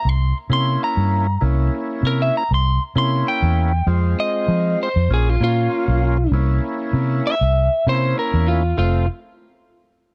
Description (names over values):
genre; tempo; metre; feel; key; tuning
straight-eighth soul blues; 98 BPM; 4/4; swing 54% on 16ths; F harmonic minor; A4 = 439 Hz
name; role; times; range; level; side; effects
lightly driven lead guitar; melody; 0.0-9.1 s; F4 to C6; -24 LUFS; equal; none
vintage muted fingered electric bass; bass; 0.1-9.1 s; F1 to F3; -20 LUFS; equal; none
overdriven tonewheel organ; accompaniment; 0.5-9.1 s; Ab3 to F4; -28 LUFS; equal; slow rotary speaker
room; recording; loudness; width
little or no reverb; dry, close 1970s-style studio recording; -19 LUFS; mono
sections
0.0-8.8 A section; 8.8-10.1 B section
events
none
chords
0.0 C7b9; 3.9 Fm; 5.1 Bbm; 6.3 C7b9; 8.8 F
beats
0.20 0.81 | 1.42 2.03 2.65 3.26 | 3.87 4.49 5.10 5.71 | 6.33 6.94 7.55 8.16 | 8.78